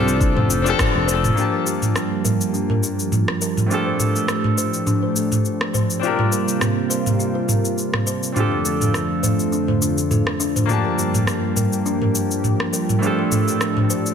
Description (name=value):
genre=sunset chillout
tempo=103 BPM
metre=4/4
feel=swing 55% on 16ths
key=F major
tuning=A4 = 436 Hz
part: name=bright concert grand piano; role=accompaniment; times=0.0-14.1 s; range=A2 to A5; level=-24 LUFS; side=moving between left 8 dB and right 5 dB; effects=auto-pan, ping-pong delay
part: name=lush unison pad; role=sustained chords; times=0.0-14.1 s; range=F2 to A4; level=-23 LUFS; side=right 2 dB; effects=chorus
part: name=kalimba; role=arpeggios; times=0.0-14.1 s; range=D4 to C5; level=-27 LUFS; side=left 6 dB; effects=low-pass filter, ping-pong delay
part: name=sustaining fretless electric bass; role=bass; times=0.0-1.3 s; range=F1 to C2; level=-21 LUFS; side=equal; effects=ensemble chorus
part: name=smooth R&B drum kit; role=drums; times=0.1-14.1 s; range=cabasa, rim click, toms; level=-21 LUFS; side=equal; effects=overdrive
part: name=electronic kick drum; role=drums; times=0.2-0.9 s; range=none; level=-20 LUFS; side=equal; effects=overdrive
room=moderate lush hall reverb, RT60 2.2 s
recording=none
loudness=-17 LUFS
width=side -7 dB against mid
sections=0.0-1.4 A section; 1.4-14.1 B section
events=band accent 0.8; filter sweep on analog synth pad 1.4-14.1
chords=0.0 F6; 1.4 Gm7; 3.7 F6/A; 6.0 C7sus4; 8.4 F6; 10.7 Gm7; 13.0 F6/A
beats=0.21 0.79 | 1.37 1.95 2.54 3.12 | 3.70 4.28 4.87 5.45 | 6.03 6.61 7.20 7.78 | 8.36 8.94 9.53 10.11 | 10.69 11.27 11.86 12.44 | 13.02 13.61